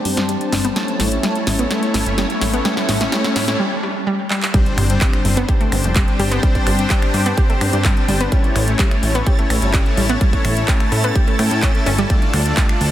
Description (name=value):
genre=progressive house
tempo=127 BPM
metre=4/4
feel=straight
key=unclear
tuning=A4 = 440 Hz
part: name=evolving wavetable pad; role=sustained chords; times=0.0-12.9 s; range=D4 to A5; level=-27 LUFS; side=equal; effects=phaser, built-in reverb, sidechain pumping
part: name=analog pluck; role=arpeggios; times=0.0-12.6 s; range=G3 to G5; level=-24 LUFS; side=right 1 dB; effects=chorus, sidechain pumping, digital delay
part: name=soft supersaw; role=stabs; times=0.0-12.9 s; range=G3 to G5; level=-22 LUFS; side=left 2 dB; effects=sidechain pumping, low-pass filter, digital delay
part: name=riser and impact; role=sound effects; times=0.1-6.4 s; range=none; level=-30 LUFS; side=right 1 dB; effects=none
part: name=plucky analog bass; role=bass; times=0.1-12.9 s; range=F1 to A2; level=-20 LUFS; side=equal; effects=sidechain pumping
part: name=big-room dance drum kit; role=drums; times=0.1-12.9 s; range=finger snaps, handclaps, hi-hat, snare drum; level=-23 LUFS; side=equal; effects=sidechain pumping on hats
part: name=electronic kick drum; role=drums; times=4.5-12.7 s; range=none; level=-16 LUFS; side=equal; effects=none
part: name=backwards swelling texture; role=texture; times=5.9-12.9 s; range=A6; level=-31 LUFS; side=right 2 dB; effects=built-in reverb, sidechain pumping
room=moderate lush hall reverb, RT60 2.0 s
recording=dense, heavily limited modern master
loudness=-15 LUFS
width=side -12 dB against mid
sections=0.0-4.5 A section; 4.5-12.9 B section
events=build-up 0.0-4.5; drum fill 0.0-3.6, 4.3; filter sweep on synth arpeggio sound 0.0-4.5; filter sweep on supersaw synth 0.0-4.5; break 3.6-4.5; drop 4.5-12.9; impact 4.5-6.4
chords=0.0 Gsus4; 0.8 A; 4.5 Gsus4; 8.3 A; 12.1 Dm